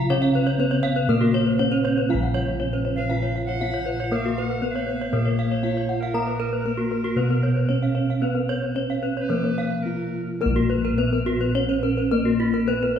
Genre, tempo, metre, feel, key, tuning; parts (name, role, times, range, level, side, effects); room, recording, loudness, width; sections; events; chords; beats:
Balinese gamelan; 106-122 BPM; 4/4; straight; Bb pelog; A4 = 439 Hz
gamelan-type bronze metallophone; melody; 0.0-13.0 s; Bb3 to Bb4; -25 LUFS; right 1 dB
gamelan-type bronze metallophone; accompaniment; 0.0-10.4 s; Db3-30c to Cb4+20c; -33 LUFS; right 1 dB
gamelan-type bronze metallophone; arpeggios; 0.0-13.0 s; Gb4-20c to Bb5; -28 LUFS; left 6 dB
gamelan-type bossed gongs; bass; 0.0-13.0 s; Bb1 to Cb5+20c; -25 LUFS; equal
gamelan-type bronze metallophone; arpeggios; 0.2-13.0 s; F4-30c to F5-30c; -30 LUFS; right 3 dB
bright reedy tenor recorder; second line; 3.0-10.3 s; Bb4 to Gb5; -33 LUFS; right 4 dB; tape echo
wet recital hall reverb, RT60 1.9 s; heard from further back in the room; -20 LUFS; side -8 dB against mid
0.0-2.1 A section; 2.1-10.4 B section; 10.4-13.0 C section
break 9.6-10.4
| 0.10 0.60 1.09 1.59 | 2.10 2.60 3.11 3.62 | 4.12 4.63 5.13 5.64 | 6.14 6.65 7.17 7.69 | 8.22 8.76 9.30 9.86 | 10.42 10.98 11.55 12.12 | 12.68